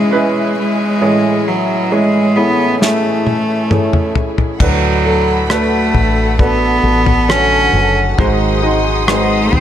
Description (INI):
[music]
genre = pop ballad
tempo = 67 BPM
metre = 4/4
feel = straight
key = unclear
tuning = A4 = 441 Hz
[part]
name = bright cello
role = melody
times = 0.0-9.6 s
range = F#3 to C#4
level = -15 LUFS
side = right 1 dB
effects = none
[part]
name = warm grand piano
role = accompaniment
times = 0.0-9.6 s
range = G#2 to E5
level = -18 LUFS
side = right 3 dB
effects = none
[part]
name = warm studio string section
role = sustained chords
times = 0.0-9.6 s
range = A2 to D#6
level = -22 LUFS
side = left 2 dB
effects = none
[part]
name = flamenco guitar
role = arpeggios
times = 0.0-9.6 s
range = G#2 to A4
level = -23 LUFS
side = left 9 dB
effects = none
[part]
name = damped 70s drum kit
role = drums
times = 2.8-9.6 s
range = crash cymbal, kick drum, rim click, snare drum, toms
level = -16 LUFS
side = left 1 dB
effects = none
[part]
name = woody fretless electric bass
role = bass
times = 4.6-9.6 s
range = F#1 to D#2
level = -18 LUFS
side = equal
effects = none
[sound]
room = light reverb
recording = none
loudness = -11 LUFS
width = side -10 dB against mid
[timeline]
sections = 0.0-4.6 A section; 4.6-9.6 B section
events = drum fill 2.8-4.6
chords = 0.0 C#m7/G#; 1.0 Amaj7; 4.6 D6; 8.2 G#7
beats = 0.13 | 1.02 1.92 2.81 3.71 | 4.60 5.50 6.39 7.29 | 8.19 9.08